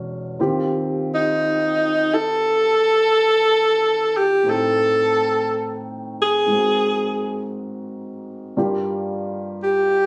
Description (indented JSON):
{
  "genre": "jazz ballad",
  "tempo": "59 BPM",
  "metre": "4/4",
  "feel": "swing 69% on 8ths",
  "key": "unclear",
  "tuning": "A4 = 441 Hz",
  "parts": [
    { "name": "warm concert grand piano", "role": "accompaniment", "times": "0.0-10.1 s", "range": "Eb2 to G5", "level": "-28 LUFS", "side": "equal", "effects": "none" },
    { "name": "breathy alto saxophone", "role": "melody", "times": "1.1-10.1 s", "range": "Eb4 to A4", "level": "-19 LUFS", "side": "equal", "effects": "none" }
  ],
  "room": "light reverb",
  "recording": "recorded on a phone in the room, studio ambience, compression",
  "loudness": "-20 LUFS",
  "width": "mono",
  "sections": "0.0-10.1 A section",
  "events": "none",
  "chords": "0.4 Eb69; 4.5 Am7b5; 6.5 Ab9; 8.5 Gm7"
}